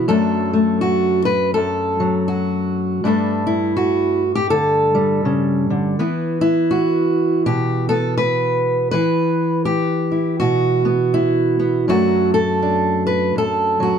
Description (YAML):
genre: folk, solo fingerstyle acoustic guitar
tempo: 81 BPM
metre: 4/4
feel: swing 60% on 8ths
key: unclear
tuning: A4 = 440 Hz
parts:
  - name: fingerpicked steel-string acoustic guitar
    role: solo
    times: 0.0-14.0 s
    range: F#2 to B4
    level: -16 LUFS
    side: equal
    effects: none
room: light reverb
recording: none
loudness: -16 LUFS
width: side -7 dB against mid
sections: 0.0-14.0 A section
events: none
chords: 0.1 Bm7/F# (rootless); 3.0 Gsus2; 6.0 Emadd9; 11.9 Gmaj9/F# (rootless)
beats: | 0.08 0.82 1.55 2.29 | 3.03 3.77 4.51 5.25 | 5.98 6.72 7.46 8.19 | 8.93 9.67 10.40 11.14 | 11.88 12.61 13.35